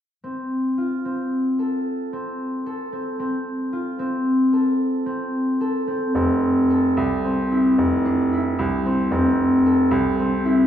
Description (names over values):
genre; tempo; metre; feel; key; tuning
contemporary instrumental, chamber music in an uneven meter; 224 BPM (eighths); 11/8; straight; F major; A4 = 440 Hz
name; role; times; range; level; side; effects
concert harp; arpeggios; 0.2-10.7 s; C4 to A4; -20 LUFS; equal; none
clear baby grand piano; bass; 6.1-10.7 s; F1 to C2; -22 LUFS; right 1 dB; none
room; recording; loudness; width
wet recital hall reverb, RT60 1.5 s; recorded in a church or concert hall; -19 LUFS; side -10 dB against mid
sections
0.2-6.2 A section; 6.2-10.7 B section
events
none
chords
0.2 F; 6.2 Fmaj7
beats
| 0.23 0.50 0.77 1.04 1.31 1.58 1.85 2.12 2.39 2.66 2.93 | 3.19 3.46 3.73 4.00 4.26 4.53 4.80 5.07 5.33 5.61 5.88 | 6.15 6.43 6.70 6.97 7.24 7.51 7.78 8.05 8.32 8.59 8.85 | 9.12 9.38 9.65 9.92 10.19 10.45